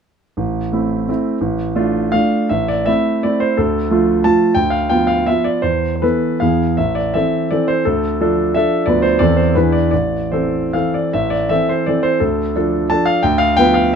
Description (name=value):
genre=classical, romantic triple-time dance for piano with dotted rhythms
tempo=139-195 BPM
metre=3/4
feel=rubato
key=A minor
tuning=A4 = 440 Hz
part: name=clear concert grand piano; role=solo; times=0.4-14.0 s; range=A1 to A5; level=-14 LUFS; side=equal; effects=none
room=light reverb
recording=none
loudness=-14 LUFS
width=side -7 dB against mid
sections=0.4-2.5 A section; 2.5-11.1 B section; 11.1-14.0 B section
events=none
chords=0.4 Am; 1.4 Dm/A; 2.5 Am; 3.6 Dm; 4.6 Bdim/D; 5.6 Esus4; 6.4 E; 6.8 Am; 7.9 Dm; 8.9 Bdim/D; 9.2 Am/E; 9.6 E7; 9.9 Am; 12.2 Dm; 13.2 Bdim/D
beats=| 0.38 0.74 1.09 | 1.41 1.74 2.12 | 2.51 2.87 3.24 | 3.58 3.92 4.25 | 4.56 4.90 5.27 | 5.64 6.03 6.41 | 6.78 7.14 7.51 | 7.85 8.20 8.55 | 8.86 9.20 9.55 | 9.92 10.32 10.74 | 11.14 11.50 11.87 | 12.21 12.55 12.90 | 13.23 13.57 13.94